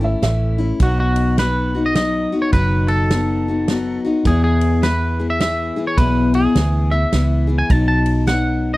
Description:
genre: honky-tonk and classic country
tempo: 104 BPM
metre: 3/4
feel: swing 62% on 8ths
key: unclear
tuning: A4 = 440 Hz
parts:
  - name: twangy electric guitar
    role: melody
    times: 0.0-8.8 s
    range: F#4 to A5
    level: -22 LUFS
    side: right 1 dB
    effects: none
  - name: clear upright piano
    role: second line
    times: 0.0-0.7 s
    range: E5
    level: -26 LUFS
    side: right 1 dB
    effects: none
  - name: picked steel-string acoustic guitar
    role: accompaniment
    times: 0.0-8.8 s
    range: E2 to G#4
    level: -20 LUFS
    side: left 3 dB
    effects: none
  - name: vintage muted fingered electric bass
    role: bass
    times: 0.0-8.8 s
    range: F#1 to E2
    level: -19 LUFS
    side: right 1 dB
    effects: none
  - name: natural country drum kit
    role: drums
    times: 0.2-8.4 s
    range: hi-hat, kick drum, ride cymbal, snare drum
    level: -18 LUFS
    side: right 1 dB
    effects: none
room: little or no reverb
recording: dry, close 1970s-style studio recording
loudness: -15 LUFS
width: side -18 dB against mid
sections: 0.8-8.8 A section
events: none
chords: 0.0 A; 0.8 B; 4.2 E; 7.7 B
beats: 0.23 | 0.80 1.38 1.95 | 2.53 3.10 3.67 | 4.25 4.83 5.40 | 5.97 6.55 7.12 | 7.70 8.27

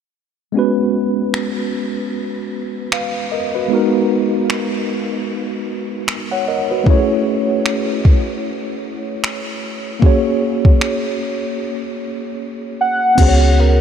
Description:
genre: contemporary R&B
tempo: 76 BPM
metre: 4/4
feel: swing 58% on 16ths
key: unclear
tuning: A4 = 441 Hz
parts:
  - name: mellow tine electric piano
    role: accompaniment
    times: 0.5-13.8 s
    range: G#3 to F#5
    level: -18 LUFS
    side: right 1 dB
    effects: medium stereo tremolo
  - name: smooth R&B drum kit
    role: drums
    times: 1.3-13.4 s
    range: crash cymbal, finger snaps, hi-hat, kick drum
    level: -18 LUFS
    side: equal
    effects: none
  - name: warm velvety synth lead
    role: melody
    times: 12.8-13.8 s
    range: A#4 to F#5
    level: -15 LUFS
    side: equal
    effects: chorus, tape echo
  - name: warm 808-style bass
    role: bass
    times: 13.2-13.8 s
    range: C#2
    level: -12 LUFS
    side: equal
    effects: none
room: moderate huge ambient reverb, RT60 8.7 s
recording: dreamy mix soaked in reverb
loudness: -15 LUFS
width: side -8 dB against mid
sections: 0.5-13.2 A section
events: break 11.6-13.2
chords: 0.5 C#7sus4; 3.7 G#m9; 6.9 Amaj7; 10.0 F#add9; 13.2 C#7sus4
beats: | 0.55 1.34 2.13 2.92 | 3.71 4.50 5.29 6.08 | 6.87 7.65 8.44 9.23 | 10.02 10.81 11.60 12.39 | 13.18

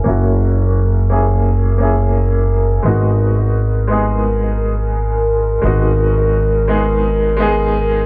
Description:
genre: trip hop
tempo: 86 BPM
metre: 4/4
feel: swing 55% on 16ths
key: G# minor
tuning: A4 = 441 Hz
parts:
  - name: bright upright piano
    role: accompaniment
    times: 0.0-8.1 s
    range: G#3 to G#4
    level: -22 LUFS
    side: equal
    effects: tremolo, tape echo
  - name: warbly tape-like pad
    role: sustained chords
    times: 0.0-8.1 s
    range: A#4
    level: -23 LUFS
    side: equal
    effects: chorus, built-in reverb
  - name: upright bass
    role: bass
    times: 0.0-8.1 s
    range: F#1 to G#1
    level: -17 LUFS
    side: equal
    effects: tube saturation
room: light reverb, small room ambience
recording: dry, gritty hardware recording, transformer saturation, vinyl crackle, low-pass filter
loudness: -15 LUFS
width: mono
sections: 0.0-8.1 A section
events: filter sweep 0.0-8.1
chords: 0.0 F#7; 2.8 G#m7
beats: | 0.06 0.76 1.45 2.15 | 2.85 3.55 4.25 4.94 | 5.64 6.34 7.04 7.73

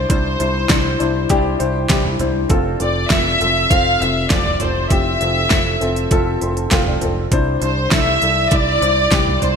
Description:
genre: piano-driven pop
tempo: 100 BPM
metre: 4/4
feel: straight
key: C major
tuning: A4 = 442 Hz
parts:
  - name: warm studio violin section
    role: melody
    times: 0.0-9.6 s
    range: C5 to F5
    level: -18 LUFS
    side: equal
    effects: none
  - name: dark upright piano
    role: accompaniment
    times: 0.0-9.6 s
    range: C3 to C6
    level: -21 LUFS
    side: left 3 dB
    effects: lush chorus
  - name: overdriven picked electric bass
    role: bass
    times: 0.0-9.6 s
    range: F1 to C2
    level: -22 LUFS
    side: right 1 dB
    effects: none
  - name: pop drum kit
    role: drums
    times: 0.1-9.6 s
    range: hi-hat, kick drum, snare drum, toms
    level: -18 LUFS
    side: right 1 dB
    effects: gated reverb
room: moderate lush hall reverb, RT60 2.3 s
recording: bright 1980s-style digital production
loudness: -14 LUFS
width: side -6 dB against mid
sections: 0.0-9.6 A section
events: upright piano fill 6.1-7.3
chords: 0.0 Cadd9; 2.5 F; 7.3 Cadd9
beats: | 0.10 0.70 1.30 1.90 | 2.50 3.10 3.71 4.31 | 4.91 5.51 6.11 6.71 | 7.32 7.92 8.52 9.12

